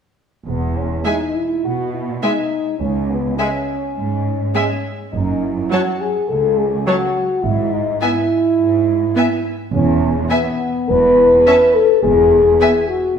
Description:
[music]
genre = quick classical-period movement for symphony orchestra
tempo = 104 BPM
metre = 4/4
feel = rubato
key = E major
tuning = A4 = 440 Hz
[part]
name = mellow French horn section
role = sustained chords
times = 0.5-13.2 s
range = B3 to B4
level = -16 LUFS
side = left 1 dB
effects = none
[part]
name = rich studio double bass section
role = bass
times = 0.5-12.5 s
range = E1 to C#2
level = -23 LUFS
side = right 4 dB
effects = none
[part]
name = warm studio cello section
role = bass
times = 0.5-12.5 s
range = C#2 to B2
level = -22 LUFS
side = right 3 dB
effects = none
[part]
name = rich symphonic viola section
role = accompaniment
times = 1.0-12.7 s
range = F#3 to C#4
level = -23 LUFS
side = right 3 dB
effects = none
[part]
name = warm chamber violin section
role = melody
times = 1.1-12.7 s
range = G#5 to A5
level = -26 LUFS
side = left 4 dB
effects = none
[part]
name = rich chamber violin section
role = second line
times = 1.1-12.7 s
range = C#5 to E5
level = -24 LUFS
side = left 2 dB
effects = none
[sound]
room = wet scoring stage reverb, RT60 1.5 s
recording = minimal, uncompressed stereo recording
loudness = -14 LUFS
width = side -7 dB against mid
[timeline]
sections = 0.5-13.2 A section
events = none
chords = 0.5 E5; 2.8 C#5; 5.1 F#m; 7.4 E/G#; 9.7 E5; 10.9 A5/E; 12.0 E

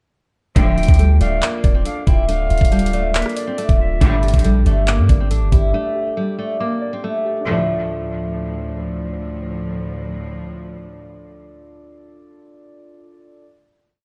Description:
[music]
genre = hip hop, trap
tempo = 139 BPM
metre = 4/4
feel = half-time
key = D minor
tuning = A4 = 440 Hz
[part]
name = picked steel-string acoustic guitar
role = melody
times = 0.6-8.7 s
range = G3 to E4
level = -25 LUFS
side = equal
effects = low-pass filter, delay
[part]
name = jazz flute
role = second line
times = 0.6-4.0 s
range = D5 to G5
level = -32 LUFS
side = equal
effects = delay
[part]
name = muted felt-like synth keys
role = accompaniment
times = 0.6-13.4 s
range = D4 to D6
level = -31 LUFS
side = equal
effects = chorus, low-pass filter
[part]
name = rich chamber string section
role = stabs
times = 0.6-0.9, 4.0-4.3, 7.5-11.0 s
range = D2 to G3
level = -28 LUFS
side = equal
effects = delay
[part]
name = long sustained 808-style bass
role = bass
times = 0.6-5.7 s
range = D1 to G2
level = -19 LUFS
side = equal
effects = none
[part]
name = trap drum kit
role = drums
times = 0.6-5.6 s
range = handclaps, hi-hat, kick drum, rim click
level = -19 LUFS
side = equal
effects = none
[sound]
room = light reverb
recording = dark, warm production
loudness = -18 LUFS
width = mono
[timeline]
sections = 0.6-7.5 hook; 7.5-10.9 final chord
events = none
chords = 0.6 Dm; 4.0 Gsus2; 7.5 Dm

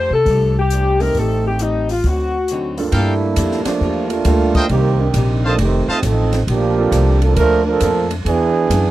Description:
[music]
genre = jazz, big band swing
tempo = 135 BPM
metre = 4/4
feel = swing 66% on 8ths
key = unclear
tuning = A4 = 440 Hz
[part]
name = mellow saxophone section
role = melody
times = 0.0-2.8 s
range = Eb4 to C5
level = -18 LUFS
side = left 3 dB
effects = none
[part]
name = picked acoustic archtop guitar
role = accompaniment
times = 0.0-8.9 s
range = F2 to A4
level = -27 LUFS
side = left 4 dB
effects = none
[part]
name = upright bass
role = bass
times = 0.0-8.9 s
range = F1 to C3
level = -18 LUFS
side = equal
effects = none
[part]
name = open jazz drum kit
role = drums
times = 0.3-8.8 s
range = hi-hat, kick drum, ride cymbal, snare drum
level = -26 LUFS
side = equal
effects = none
[part]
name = warm concert grand piano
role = accompaniment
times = 1.0-7.3 s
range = G2 to A4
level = -23 LUFS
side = right 4 dB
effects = none
[part]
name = warm trombone section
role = second line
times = 2.9-8.9 s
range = Eb3 to Bb4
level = -17 LUFS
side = right 4 dB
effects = none
[part]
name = brilliant trumpet section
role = stabs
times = 2.9-6.0 s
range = A4 to A5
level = -19 LUFS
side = equal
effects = none
[sound]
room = little or no reverb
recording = dry, close 1970s-style studio recording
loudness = -14 LUFS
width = side -15 dB against mid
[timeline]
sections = 0.0-2.9 A section; 2.9-8.9 B section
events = trombone section solo 2.9-8.9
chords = 0.0 F69; 1.1 Am7b5; 2.0 D7b9; 2.9 Gm9; 4.7 Cm7; 5.6 F7; 6.5 Bbmaj7; 8.3 E7

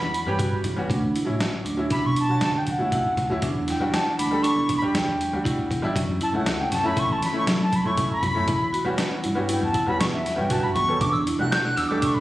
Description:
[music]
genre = progressive instrumental, band music in an uneven meter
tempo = 119 BPM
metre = 5/4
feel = straight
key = E dorian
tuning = A4 = 440 Hz
[part]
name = bright reedy wooden flute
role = melody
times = 0.0-12.2 s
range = E5 to G6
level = -26 LUFS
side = equal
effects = digital delay
[part]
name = clear grand piano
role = accompaniment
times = 0.0-12.2 s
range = F#3 to A4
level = -29 LUFS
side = left 1 dB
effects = none
[part]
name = marimba with medium hard mallets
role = arpeggios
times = 0.0-12.2 s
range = C#4 to F#4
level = -28 LUFS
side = right 2 dB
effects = none
[part]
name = upright bass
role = bass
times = 0.0-12.2 s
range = A1 to F#3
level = -28 LUFS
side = equal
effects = none
[part]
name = trip hop sampler-style drum kit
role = drums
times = 0.1-12.1 s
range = hi-hat, kick drum, snare drum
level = -28 LUFS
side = equal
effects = none
[sound]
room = light reverb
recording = recorded on a phone in the room, studio reverb, compression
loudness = -21 LUFS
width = side -16 dB against mid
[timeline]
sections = 0.0-12.2 A section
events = flute solo 0.0-12.2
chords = 0.0 Em69; 0.9 Dmaj7; 3.4 Em7; 6.0 F#m7; 8.5 A13/E (rootless); 11.0 Em11

